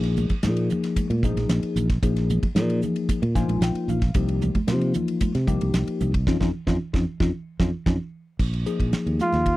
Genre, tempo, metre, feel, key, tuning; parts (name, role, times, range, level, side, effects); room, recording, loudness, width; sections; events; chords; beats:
electric jazz fusion; 113 BPM; 4/4; straight; Bb dorian; A4 = 439 Hz
tine electric piano; accompaniment; 0.0-9.4 s; F3 to Ab5; -26 LUFS; left 3 dB; phaser
fingered electric bass; bass; 0.0-9.6 s; Bb1 to C3; -24 LUFS; equal
damped 70s drum kit; drums; 0.0-9.6 s; crash cymbal, hi-hat, kick drum, ride cymbal, snare drum; -25 LUFS; right 1 dB
congas; percussion; 0.2-9.5 s; -31 LUFS; right 4 dB
trumpet with bucket mute; melody; 9.2-9.6 s; F4; -21 LUFS; right 1 dB
little or no reverb; dry, close 1970s-style studio recording; -21 LUFS; side -17 dB against mid
0.0-8.4 A section; 8.4-9.6 B section
tine electric piano fill 3.1-4.2; band accent 6.3-8.4; drum fill 7.3-8.4
0.0 Bb7sus4; 4.2 Cm7; 6.3 Dbadd9/F; 8.4 Bb7sus4
0.44 0.97 1.50 | 2.03 2.56 3.09 3.62 | 4.16 4.69 5.22 5.75 | 6.28 6.81 7.34 7.87 | 8.40 8.94 9.47